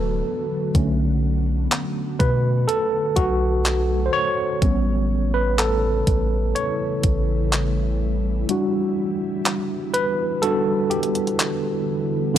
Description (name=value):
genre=contemporary R&B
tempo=62 BPM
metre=4/4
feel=straight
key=unclear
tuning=A4 = 441 Hz
part: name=tine electric piano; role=accompaniment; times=0.0-12.4 s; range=D3 to C#5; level=-22 LUFS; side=right 1 dB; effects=overdrive, fast stereo tremolo
part: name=ethereal airy pad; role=sustained chords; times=0.0-12.4 s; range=C#3 to F#4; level=-29 LUFS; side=equal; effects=ensemble chorus, built-in reverb, phaser
part: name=long sustained 808-style bass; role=bass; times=0.0-8.5 s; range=D1 to B2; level=-22 LUFS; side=equal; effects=none
part: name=clean 12-bit digital drum machine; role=drums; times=0.7-11.6 s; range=handclaps, hi-hat, kick drum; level=-22 LUFS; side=equal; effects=overdrive
room=little or no reverb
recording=dry, gritty hardware recording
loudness=-19 LUFS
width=side -10 dB against mid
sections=0.0-12.4 A section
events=tine electric piano solo 0.0-12.4; kick muted 8.5-12.4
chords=0.0 D6; 0.7 Bm7; 4.6 A7; 8.5 Em7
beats=| 0.75 1.72 2.68 3.65 | 4.62 5.59 6.55 7.52 | 8.49 9.46 10.43 11.39 | 12.36